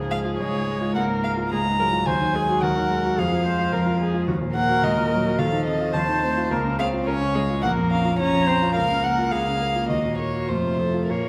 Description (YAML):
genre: quick classical-period movement for piano quartet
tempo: 107 BPM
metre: 4/4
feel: rubato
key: Bb minor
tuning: A4 = 440 Hz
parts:
  - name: rich cello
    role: second line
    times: 0.0-11.3 s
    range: F3 to Db4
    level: -31 LUFS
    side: equal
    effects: none
  - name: warm concert grand piano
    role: accompaniment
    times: 0.0-11.3 s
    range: Bb1 to Gb4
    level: -26 LUFS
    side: equal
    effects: none
  - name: warm viola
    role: accompaniment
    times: 0.0-11.3 s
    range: F4 to Db5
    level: -31 LUFS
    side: equal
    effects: none
  - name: warm violin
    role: melody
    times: 0.1-11.3 s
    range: Bb4 to Bb5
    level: -27 LUFS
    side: equal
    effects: none
room: wet scoring stage reverb, RT60 1.7 s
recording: none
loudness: -22 LUFS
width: mono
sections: 0.0-11.3 A section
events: none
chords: 0.0 Bbm/Db; 2.1 Ab5/Eb; 3.2 Fmadd11; 4.3 Ebm; 5.4 F7/Eb; 6.5 Bbm/Db; 7.6 Bbm; 8.8 Bbm/Db; 9.9 Ebm; 10.5 F